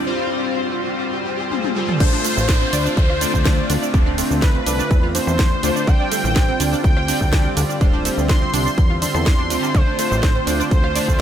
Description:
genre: progressive house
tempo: 124 BPM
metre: 4/4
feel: straight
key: D minor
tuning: A4 = 439 Hz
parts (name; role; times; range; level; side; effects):
- warm analog pad; sustained chords; 0.0-11.2 s; D3 to E5; -29 LUFS; right 1 dB; chorus, sidechain pumping
- chorused polysynth; stabs; 0.0-11.2 s; G3 to D5; -24 LUFS; left 1 dB; sidechain pumping, tape echo
- riser and downlifter; sound effects; 0.0-5.9 s; none; -28 LUFS; equal; none
- house drum kit; drums; 1.5-11.2 s; crash cymbal, hi-hat, ride cymbal, rim click, shaker, snare drum, toms; -26 LUFS; right 1 dB; sidechain pumping on hats, sidechain pumping on toms, sidechain pumping on cymbals, sidechain pumping on perc
- wide unison lead; melody; 2.0-11.2 s; B4 to C6; -26 LUFS; equal; tape echo
- bright symphonic violin section; second line; 2.0-11.2 s; B4 to C6; -32 LUFS; equal; none
- analog pluck; arpeggios; 2.0-11.0 s; A3 to A4; -27 LUFS; right 3 dB; analog chorus, sidechain pumping, tape echo
- plucky analog bass; bass; 2.0-11.2 s; D1 to E2; -23 LUFS; equal; tube saturation, sidechain pumping
- electronic kick drum; drums; 2.0-11.2 s; none; -16 LUFS; equal; none
room: little or no reverb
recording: none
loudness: -16 LUFS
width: side -10 dB against mid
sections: 0.0-2.0 A section; 2.0-11.2 B section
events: build-up 0.0-2.0; riser 0.0-2.0; break 0.1-2.0; drum fill 1.5-2.0; drop 2.0-11.2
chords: 0.0 Fsus2; 2.0 Dm7; 5.9 Fsus2; 9.7 Dm7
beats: | 0.07 0.55 1.04 1.52 | 2.00 2.49 2.97 3.46 | 3.94 4.42 4.91 5.39 | 5.88 6.36 6.84 7.33 | 7.81 8.29 8.78 9.26 | 9.75 10.23 10.71 11.20

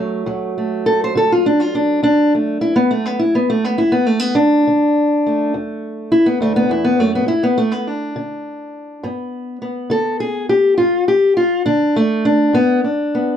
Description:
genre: acoustic country blues, solo or duo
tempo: 69 BPM (dotted quarters)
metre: 12/8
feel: straight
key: D major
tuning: A4 = 440 Hz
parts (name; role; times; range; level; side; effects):
- fingerpicked steel-string acoustic guitar; solo; 0.0-13.4 s; D2 to C5; -14 LUFS; equal; none
room: little or no reverb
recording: dry, close 1970s-style studio recording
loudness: -14 LUFS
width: side -9 dB against mid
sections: 0.0-13.4 A section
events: steel-string acoustic guitar solo 0.0-13.4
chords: 0.0 D; 7.3 G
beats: | 0.28 1.15 2.03 2.90 | 3.78 4.65 5.53 6.40 | 7.28 8.15 9.03 9.90 | 10.78 11.66 12.53

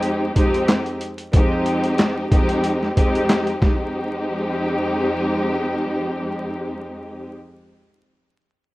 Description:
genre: hip hop, boom-bap hip-hop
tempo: 92 BPM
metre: 4/4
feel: swing 56% on 16ths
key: F minor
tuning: A4 = 438 Hz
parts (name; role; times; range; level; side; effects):
- dark studio string section; accompaniment; 0.0-7.3 s; F2 to G4; -21 LUFS; equal; high-pass filter, low-pass filter
- boom bap sampler-style drum kit; drums; 0.0-3.8 s; handclaps, hi-hat, kick drum, snare drum; -18 LUFS; equal; none
room: small room ambience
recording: rough home demo mix, vinyl crackle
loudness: -18 LUFS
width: side -18 dB against mid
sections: 0.0-3.9 A section; 3.9-6.6 B section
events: none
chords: 0.0 Fm9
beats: 0.03 0.68 | 1.34 1.99 2.64 3.29 | 3.94 4.60 5.25 5.90

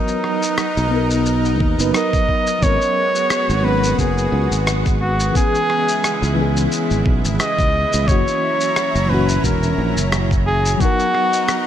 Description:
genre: sunset chillout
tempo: 88 BPM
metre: 4/4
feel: swing 55% on 16ths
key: C# dorian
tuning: A4 = 440 Hz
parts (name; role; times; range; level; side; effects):
- clear flugelhorn; melody; 0.0-11.7 s; D#4 to D#5; -20 LUFS; equal; digital delay
- mellow FM electric piano; accompaniment; 0.0-11.7 s; A#2 to B4; -22 LUFS; moving between left 5 dB and right 4 dB; chorus, tremolo, auto-pan, digital delay
- lush unison pad; sustained chords; 0.0-11.7 s; C#3 to A#5; -25 LUFS; equal; chorus
- electronic shaker and rim click; drums; 0.1-11.6 s; none; -25 LUFS; left 1 dB; studio reverb
- sustaining fretless electric bass; bass; 0.8-10.7 s; E1 to D#2; -19 LUFS; equal; none
- electronic kick drum; drums; 1.6-11.0 s; none; -19 LUFS; equal; studio reverb
room: moderate lush hall reverb, RT60 2.1 s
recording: dark, warm production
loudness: -15 LUFS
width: side -10 dB against mid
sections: 0.0-11.7 A section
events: none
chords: 0.0 Bmaj7; 2.6 G#m11; 5.4 C#m7; 8.1 F#7; 10.8 Bmaj7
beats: 0.58 1.26 1.95 | 2.63 3.31 3.99 4.67 | 5.35 6.04 6.72 7.40 | 8.08 8.76 9.45 10.13 | 10.81 11.49

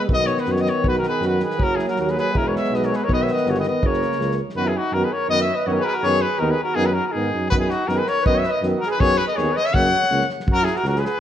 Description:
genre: balkan folk, Balkan brass band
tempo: 162 BPM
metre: 2/4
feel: straight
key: unclear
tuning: A4 = 441 Hz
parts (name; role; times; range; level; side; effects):
- dark trombone; accompaniment; 0.0-10.2 s; A#3 to B3; -28 LUFS; left 4 dB; none
- warm euphonium; accompaniment; 0.0-10.2 s; C#3 to G#3; -27 LUFS; right 4 dB; none
- clear trumpet; melody; 0.1-11.2 s; F#4 to F#5; -22 LUFS; left 3 dB; none
- warm tuba; bass; 0.1-11.0 s; E1 to G#2; -25 LUFS; equal; none
- warm soul drum kit; percussion; 0.1-4.5, 7.5-11.1 s; kick drum, snare drum; -24 LUFS; equal; none
- warm flugelhorn; second line; 0.9-11.2 s; D#4 to C#5; -27 LUFS; right 5 dB; none
room: moderate recital hall reverb, RT60 1.6 s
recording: worn, warbling old tape, cassette tape, warbly pitch drift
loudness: -18 LUFS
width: side -10 dB against mid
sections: 0.0-4.6 A section; 4.6-10.5 B section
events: none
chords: 0.1 B; 1.6 F#; 2.3 E; 3.1 B; 3.8 F#; 4.6 B/F#; 6.0 G#m; 7.5 B/F#; 9.0 Emaj13 (rootless); 9.7 F#; 10.5 F#5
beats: | 0.09 0.46 | 0.84 1.21 | 1.58 1.96 | 2.33 2.70 | 3.08 3.45 | 3.82 4.19 | 4.56 4.93 | 5.30 5.67 | 6.04 6.41 | 6.78 7.14 | 7.51 7.88 | 8.25 8.62 | 8.99 9.36 | 9.73 10.10 | 10.47 10.84

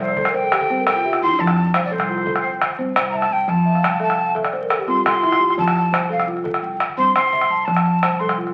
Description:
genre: west african traditional, West African string and xylophone music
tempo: 115 BPM (dotted quarters)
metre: 12/8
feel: straight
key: F major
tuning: A4 = 439 Hz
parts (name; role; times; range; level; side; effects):
- breathy jazz flute; melody; 0.0-8.4 s; C5 to C6; -22 LUFS; equal; none
- balafon; arpeggios; 0.0-8.5 s; F3 to A5; -24 LUFS; equal; none
- upright bass; bass; 0.0-8.5 s; C2 to G2; -33 LUFS; equal; none
- calabash; percussion; 0.1-8.5 s; none; -24 LUFS; equal; none
room: wet studio reverb, RT60 0.8 s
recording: very old 78 rpm record, vinyl crackle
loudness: -19 LUFS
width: mono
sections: 0.0-8.5 A section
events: balafon fill 0.0-1.4, 3.7-5.6; flute solo 0.0-8.5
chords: 0.3 C; 1.4 F; 2.4 C; 3.5 F; 4.5 C; 5.6 F; 6.6 C; 7.7 F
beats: 0.34 0.87 | 1.39 1.91 2.44 2.96 | 3.48 4.01 4.53 5.05 | 5.58 6.10 6.62 7.15 | 7.67 8.20

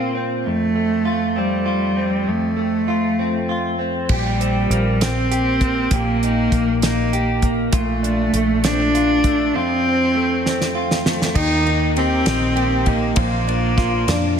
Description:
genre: six-eight pop ballad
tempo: 66 BPM (dotted quarters)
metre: 6/8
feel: straight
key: unclear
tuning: A4 = 440 Hz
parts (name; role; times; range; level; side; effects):
- warm cello; melody; 0.0-14.4 s; G3 to Eb4; -20 LUFS; equal; slapback echo
- direct-recorded clean electric guitar; accompaniment; 0.0-14.4 s; F2 to G4; -22 LUFS; equal; double-tracked left and right, slapback echo
- vintage muted fingered electric bass; bass; 4.1-14.4 s; Bb1 to F2; -22 LUFS; equal; none
- damped 70s drum kit; drums; 4.1-14.2 s; crash cymbal, hi-hat, kick drum, ride cymbal, snare drum; -22 LUFS; equal; none
- fingerpicked steel-string acoustic guitar; arpeggios; 11.4-14.4 s; Eb3 to G4; -28 LUFS; right 6 dB; none
- mellow French horn section; second line; 13.8-14.4 s; D4 to F4; -24 LUFS; left 6 dB; none
room: moderate lush hall reverb, RT60 2.0 s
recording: big arena sound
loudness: -16 LUFS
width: side -7 dB against mid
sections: 0.0-4.1 A section; 4.1-11.4 B section; 11.4-14.4 C section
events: drum fill 10.5-11.4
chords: 0.5 Fadd9; 4.1 C5/Bb; 5.9 Eb/Bb; 7.7 Dm/Bb; 9.5 F; 11.4 Eb; 13.2 Bb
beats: | 0.46 1.36 | 2.27 3.18 | 4.09 5.00 | 5.91 6.82 | 7.73 8.64 | 9.54 10.45 | 11.36 12.27 | 13.17 14.08

